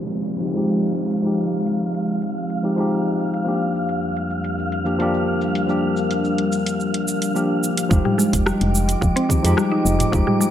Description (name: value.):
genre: organic downtempo.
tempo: 108 BPM.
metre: 4/4.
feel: straight.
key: F dorian.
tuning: A4 = 440 Hz.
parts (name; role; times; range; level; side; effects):
tine electric piano; accompaniment; 0.0-10.5 s; F3 to G4; -22 LUFS; left 1 dB; sidechain pumping, digital delay.
warbly tape-like pad; sustained chords; 0.0-10.5 s; F2 to G5; -25 LUFS; equal; chorus, built-in reverb, sidechain pumping.
afro-pop drum kit; drums; 0.0-10.5 s; hi-hat, rim click, shaker, toms; -25 LUFS; right 2 dB; none.
downlifter; sound effects; 0.0-3.5 s; none; -37 LUFS; equal; none.
wind-like tuned noise texture; texture; 0.7-10.5 s; F5 to D6; -29 LUFS; equal; built-in reverb.
mallet-like synth pluck; arpeggios; 7.9-10.5 s; Eb3 to Eb4; -21 LUFS; equal; chorus, digital delay.
woody FM bass; bass; 7.9-10.2 s; Eb1 to F2; -21 LUFS; equal; sidechain pumping.
electronic kick drum; drums; 7.9-10.2 s; none; -19 LUFS; equal; none.
room: moderate lush hall reverb, RT60 1.7 s, digital ambience.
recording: low-pass filter.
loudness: -18 LUFS.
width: side -10 dB against mid.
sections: 0.0-7.9 A section; 7.9-10.5 B section.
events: filter sweep on ambient pad 0.0-7.9; filter sweep 0.0-7.9.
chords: 0.0 Fm9; 3.5 Gm7/F; 7.9 Fm9.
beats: 0.13 0.68 | 1.24 1.79 2.35 2.91 | 3.46 4.02 4.57 5.13 | 5.68 6.24 6.79 7.35 | 7.91 8.46 9.02 9.57 | 10.13.